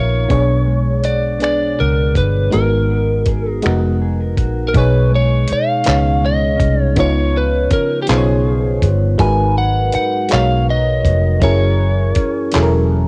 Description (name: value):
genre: slow six-eight R&B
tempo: 54 BPM (dotted quarters)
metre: 6/8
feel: straight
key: unclear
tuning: A4 = 441 Hz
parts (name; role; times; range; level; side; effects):
- lightly driven lead guitar; melody; 0.0-12.9 s; G4 to G#5; -22 LUFS; equal; none
- mellow electric guitar; second line; 0.0-13.1 s; G#2 to A#4; -28 LUFS; equal; cassette tape, analog delay
- FM electric piano; accompaniment; 0.0-13.1 s; B2 to E#5; -22 LUFS; equal; chorus, cassette tape
- vintage muted fingered electric bass; bass; 0.0-13.1 s; E1 to C#2; -18 LUFS; equal; transformer saturation
- dusty soul sampler-style drum kit; drums; 0.3-12.7 s; finger snaps, handclaps, hi-hat, kick drum; -21 LUFS; equal; cassette tape
room: little or no reverb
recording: home recording on cassette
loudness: -15 LUFS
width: mono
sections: 0.0-4.7 A section; 4.7-13.1 B section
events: none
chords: 0.3 Bm6; 2.5 G#m9; 4.7 B69; 7.0 C#9; 9.2 G#m7; 11.4 F#7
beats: | 0.30 1.41 | 2.52 3.63 | 4.75 5.86 | 6.97 8.08 | 9.19 10.30 | 11.41 12.52